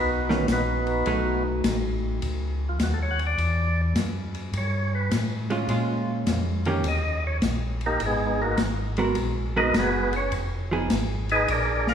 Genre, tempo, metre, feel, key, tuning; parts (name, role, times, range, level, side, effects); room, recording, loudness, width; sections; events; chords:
soul jazz organ trio; 104 BPM; 4/4; swing 67% on 8ths; B major; A4 = 440 Hz
percussive tonewheel organ; melody; 0.0-11.9 s; G#3 to F#5; -26 LUFS; equal; slow rotary speaker
mellow tonewheel organ; bass; 0.0-11.9 s; F1 to A#2; -27 LUFS; equal; slow rotary speaker
vintage hollow-body jazz guitar; accompaniment; 0.3-10.9 s; D#3 to A#4; -28 LUFS; right 2 dB
open jazz drum kit; drums; 0.3-11.9 s; hi-hat, kick drum, ride cymbal, snare drum; -30 LUFS; left 2 dB
wet recital hall reverb, RT60 1.7 s; recorded in a church or concert hall; -22 LUFS; side -8 dB against mid
0.0-11.9 A section
tonewheel organ solo 0.0-11.9
0.0 Bmaj9; 1.1 B7; 3.4 Em; 5.7 A#m7; 6.9 D#; 8.0 G#m9; 10.3 Fm7b5